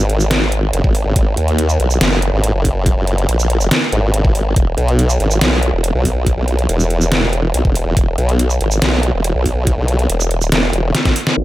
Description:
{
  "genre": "heavy wobble dubstep",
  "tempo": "141 BPM",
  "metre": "4/4",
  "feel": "half-time",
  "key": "unclear",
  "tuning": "A4 = 440 Hz",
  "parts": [
    { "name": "formant-sweep wobble bass", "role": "bass", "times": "0.0-11.4 s", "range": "E1 to D#2", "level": "-14 LUFS", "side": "equal", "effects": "chorus, overdrive" },
    { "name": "dubstep drum kit", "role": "drums", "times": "0.1-11.4 s", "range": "crash cymbal, hi-hat, shaker, snare drum", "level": "-18 LUFS", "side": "equal", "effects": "none" },
    { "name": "electronic kick drum", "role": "drums", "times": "0.8-11.1 s", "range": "none", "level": "-15 LUFS", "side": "equal", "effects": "none" }
  ],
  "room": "little or no reverb",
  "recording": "low-pass filter",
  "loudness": "-13 LUFS",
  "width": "side -16 dB against mid",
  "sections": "0.0-11.4 A section",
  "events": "drop 0.0-11.4; drum fill 10.9-11.4; band accent 11.3",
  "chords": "none"
}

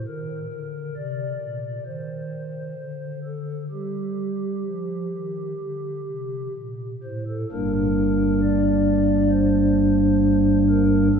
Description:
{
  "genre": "classical, chorale-style piece for pipe organ",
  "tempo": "65 BPM",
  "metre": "4/4",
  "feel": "uneven beats, rubato",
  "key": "G minor",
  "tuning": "A4 = 440 Hz",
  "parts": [
    { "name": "pipe organ, stopped flute", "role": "solo", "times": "0.0-11.2 s", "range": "D1 to D5", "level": "-21 LUFS", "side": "equal", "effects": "none" }
  ],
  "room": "wet church reverb, RT60 3.3 s",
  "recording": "minimal, uncompressed stereo recording",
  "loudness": "-20 LUFS",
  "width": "side -7 dB against mid",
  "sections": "0.0-7.5 A section; 7.5-11.2 A section",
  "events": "none",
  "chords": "0.1 Eb5; 1.9 N.C.; 7.5 Gm"
}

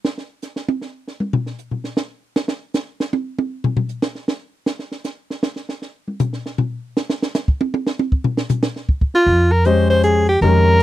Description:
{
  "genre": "modal jazz",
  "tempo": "156 BPM",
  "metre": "3/4",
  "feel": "swing 64% on 8ths",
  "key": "F minor",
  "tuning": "A4 = 440 Hz",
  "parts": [
    { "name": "compact cocktail drum kit", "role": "drums", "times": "0.0-10.8 s", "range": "hi-hat, kick drum, snare drum, toms", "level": "-20 LUFS", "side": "equal", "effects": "none" },
    { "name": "bright soprano saxophone", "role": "melody", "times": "9.2-10.8 s", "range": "F4 to C5", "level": "-14 LUFS", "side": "equal", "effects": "none" },
    { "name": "upright bass", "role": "bass", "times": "9.3-10.8 s", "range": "F2", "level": "-15 LUFS", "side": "equal", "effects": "none" },
    { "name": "warm concert grand piano", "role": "accompaniment", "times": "9.7-10.8 s", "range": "Eb3 to Eb5", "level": "-18 LUFS", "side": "left 6 dB", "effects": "none" }
  ],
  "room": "little or no reverb",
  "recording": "dry, close 1970s-style studio recording",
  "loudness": "-17 LUFS",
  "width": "side -14 dB against mid",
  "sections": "0.0-9.3 A section; 9.3-10.8 B section",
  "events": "drum solo 0.0-9.3",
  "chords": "0.0 N.C.; 9.3 Fm11"
}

